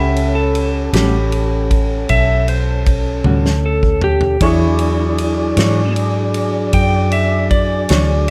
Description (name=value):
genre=slow blues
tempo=52 BPM (dotted quarters)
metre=12/8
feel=straight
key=unclear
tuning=A4 = 440 Hz
part: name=clean lap steel guitar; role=second line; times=0.0-8.3 s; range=E4 to G5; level=-22 LUFS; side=equal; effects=none
part: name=warm upright piano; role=accompaniment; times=0.0-8.3 s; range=C#4 to C#6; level=-28 LUFS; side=equal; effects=none
part: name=tonewheel organ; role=sustained chords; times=0.0-8.3 s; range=F#3 to D5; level=-24 LUFS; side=equal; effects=overdrive, slow rotary speaker
part: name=vintage muted fingered electric bass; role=bass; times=0.0-8.3 s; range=A1 to G#2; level=-20 LUFS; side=equal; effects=none
part: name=natural country drum kit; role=drums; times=0.2-8.3 s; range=kick drum, ride cymbal, snare drum, toms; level=-22 LUFS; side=equal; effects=none
part: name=clean electric guitar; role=accompaniment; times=0.9-8.1 s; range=A2 to C#5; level=-23 LUFS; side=equal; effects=tremolo
room=light reverb, small room ambience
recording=none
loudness=-15 LUFS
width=mono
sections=0.0-8.3 A section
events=electric slide guitar solo 0.0-8.3; drum fill 3.3-4.4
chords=0.0 A13; 4.4 E13